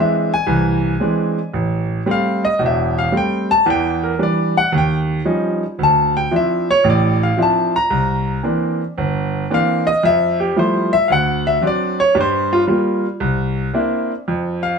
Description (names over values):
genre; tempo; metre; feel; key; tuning
solo jazz; 113 BPM; 4/4; swing 66% on 8ths; unclear; A4 = 439 Hz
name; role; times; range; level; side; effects
bright grand piano; solo; 0.0-14.8 s; E1 to Bb5; -15 LUFS; equal; none
room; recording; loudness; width
wet small room reverb, RT60 0.6 s; band playing live in one room; -15 LUFS; side -6 dB against mid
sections
0.0-14.3 A section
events
grand piano solo 0.0-14.3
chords
0.0 Eaug7; 1.5 Am7; 3.7 Em9b5; 4.7 Eb9; 5.8 Dm9; 7.9 C9; 10.0 Fmaj9; 11.1 D7; 12.1 Gm7; 13.2 C9; 14.3 N.C.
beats
0.48 1.01 | 1.54 2.07 2.60 3.13 | 3.66 4.19 4.72 5.25 | 5.78 6.31 6.84 7.37 | 7.90 8.43 8.96 9.49 | 10.03 10.55 11.09 11.62 | 12.15 12.68 13.21 13.74 | 14.27